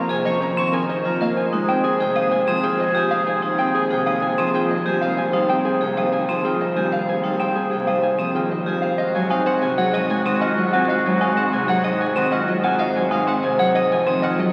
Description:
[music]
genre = classical, minimalist pattern music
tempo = 189 BPM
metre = 6/4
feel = straight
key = Ab mixolydian from 9.0 s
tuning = A4 = 440 Hz
[part]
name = mellow electric guitar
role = melody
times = 0.0-14.4 s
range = Ab4 to Ab5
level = -26 LUFS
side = equal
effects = none
[part]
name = Celtic harp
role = accompaniment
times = 0.0-14.5 s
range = C3 to C4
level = -25 LUFS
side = equal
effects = none
[part]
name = warm violin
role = arpeggios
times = 0.0-14.5 s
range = Eb5 to Eb6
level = -31 LUFS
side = equal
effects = none
[part]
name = warm cello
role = bass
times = 0.0-14.5 s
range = Eb2 to Ab2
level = -33 LUFS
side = equal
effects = none
[part]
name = vibraphone with hard mallets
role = arpeggios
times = 0.1-14.4 s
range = C4 to C5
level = -28 LUFS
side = equal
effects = none
[part]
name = warm oboe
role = second line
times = 1.4-5.0, 9.0-12.6 s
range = Gb4 to Ab4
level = -30 LUFS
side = equal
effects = none
[sound]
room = wet cathedral reverb, RT60 5.2 s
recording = very old 78 rpm record, vinyl crackle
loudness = -20 LUFS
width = mono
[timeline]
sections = 0.0-9.0 A section; 9.0-14.5 B section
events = none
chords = 0.0 Eb9sus4; 1.4 Fm7/Eb; 9.0 Ab7

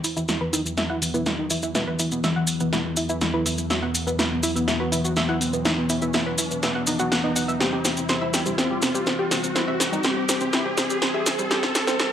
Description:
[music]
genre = melodic techno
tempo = 123 BPM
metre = 4/4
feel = straight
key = E minor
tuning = A4 = 440 Hz
[part]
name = evolving wavetable pad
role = sustained chords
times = 0.1-12.1 s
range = E2 to C4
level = -29 LUFS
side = left 2 dB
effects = chorus, built-in reverb
[part]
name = analog pluck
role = arpeggios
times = 0.0-12.1 s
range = G3 to F#5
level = -28 LUFS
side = equal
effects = chorus, tape echo
[part]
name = punchy analog drum machine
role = drums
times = 0.0-12.1 s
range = hi-hat, snare drum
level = -25 LUFS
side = equal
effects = overdrive, high-pass filter on snare, high-pass filter on hats, high-pass filter on room
[part]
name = maracas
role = percussion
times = 0.0-12.1 s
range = none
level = -28 LUFS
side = left 1 dB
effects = none
[part]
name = riser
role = sound effects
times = 2.0-12.1 s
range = none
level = -31 LUFS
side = equal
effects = none
[part]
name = fat analog lead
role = melody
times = 0.2-12.1 s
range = E3 to G4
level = -28 LUFS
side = equal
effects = tape echo
[sound]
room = light reverb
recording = dry, gritty hardware recording, transformer saturation, high-pass filter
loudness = -21 LUFS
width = side -9 dB against mid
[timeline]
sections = 0.0-12.1 A section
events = build-up 0.0-12.1; drum fill 0.0-12.1; filter sweep on analog synth lead 0.0-12.1; filter sweep on ambient pad 0.0-12.1; riser 2.0-12.1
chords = 0.0 Esus2; 7.6 C/E

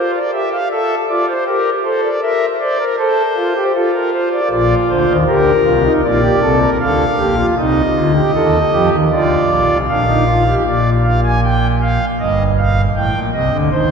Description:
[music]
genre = classical, baroque-style 3-part fugue for pipe organ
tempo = 79 BPM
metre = 4/4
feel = straight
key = Bb major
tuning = A4 = 440 Hz
[part]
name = pipe organ, foundations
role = solo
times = 0.0-13.9 s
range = G1 to Ab5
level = -12 LUFS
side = equal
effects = none
[sound]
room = wet cathedral reverb, RT60 5.2 s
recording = heard from further back in the room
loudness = -12 LUFS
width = side -6 dB against mid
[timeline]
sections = 0.0-10.6 A section; 10.6-13.9 B section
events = none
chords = 0.0 F; 1.5 C7/G; 3.0 F; 4.5 Bb; 7.6 F7/C; 9.1 Bb; 10.6 Bb7; 12.2 Eb/G

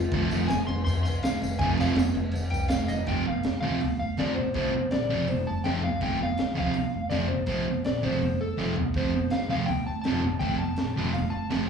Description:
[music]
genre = garage rock duo or trio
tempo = 163 BPM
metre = 4/4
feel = straight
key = F major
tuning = A4 = 440 Hz
[part]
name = electric slide guitar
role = melody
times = 0.0-11.7 s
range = F4 to C6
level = -32 LUFS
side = left 3 dB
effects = plate reverb, slapback echo, digital delay
[part]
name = upright bass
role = bass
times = 0.0-11.7 s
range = F1 to F2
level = -30 LUFS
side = equal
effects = overdrive
[part]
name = thick fuzz guitar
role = riff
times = 0.1-11.7 s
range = F2 to F3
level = -28 LUFS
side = right 2 dB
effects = distortion, slapback echo
[part]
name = crunchy breakbeat drum kit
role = drums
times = 0.1-11.6 s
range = crash cymbal, hi-hat, kick drum, snare drum, toms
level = -32 LUFS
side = right 1 dB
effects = slapback echo
[part]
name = tambourine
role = percussion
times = 0.3-3.0 s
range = none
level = -45 LUFS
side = left 2 dB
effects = none
[sound]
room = moderate club reverb, RT60 0.5 s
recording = live gig heard through the venue's PA, club reverb, small room ambience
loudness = -24 LUFS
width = side -6 dB against mid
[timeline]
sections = 0.0-3.1 A section; 3.1-11.7 B section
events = electric slide guitar solo 0.0-3.1; drum fill 8.6-9.0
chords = 0.0 F5; 3.1 F

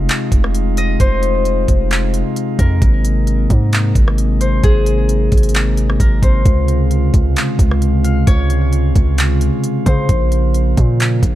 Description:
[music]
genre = hip hop, atmospheric cloud-rap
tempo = 132 BPM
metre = 4/4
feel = half-time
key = unclear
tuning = A4 = 442 Hz
[part]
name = pipe organ, flutes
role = sustained chords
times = 0.0-11.4 s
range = C3 to F4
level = -19 LUFS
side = left 1 dB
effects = sidechain pumping
[part]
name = long sustained 808-style bass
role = bass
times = 0.0-11.4 s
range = F1 to Db3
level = -15 LUFS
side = equal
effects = none
[part]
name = trap drum kit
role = drums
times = 0.1-11.3 s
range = handclaps, hi-hat, kick drum, rim click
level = -15 LUFS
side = equal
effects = none
[part]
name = concert harp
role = melody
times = 0.8-11.4 s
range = Ab4 to F5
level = -23 LUFS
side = left 3 dB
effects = low-pass filter, tape echo
[sound]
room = little or no reverb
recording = none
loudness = -12 LUFS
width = side -14 dB against mid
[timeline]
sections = 0.0-11.4 A section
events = none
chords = 0.0 Fm7; 2.8 Abadd9; 6.5 Dbmaj7; 10.1 Bbm

